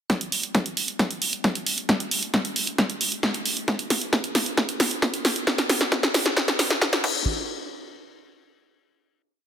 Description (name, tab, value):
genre	trance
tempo	134 BPM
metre	4/4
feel	straight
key	none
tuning	none
part	electronic kick drum	drums	0.1-7.1 s	none	-28 LUFS	equal	high-pass filter on kick
part	punchy analog drum machine	drums	0.1-7.1 s	crash cymbal, hi-hat, snare drum	-22 LUFS	equal	none
room	moderate lush hall reverb, RT60 2.2 s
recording	dense, heavily limited modern master, high-pass filter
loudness	-21 LUFS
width	side -9 dB against mid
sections	0.1-7.3 build; 7.3-9.1 final hit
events	build-up 0.1-7.3; drum fill 0.1-7.3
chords	none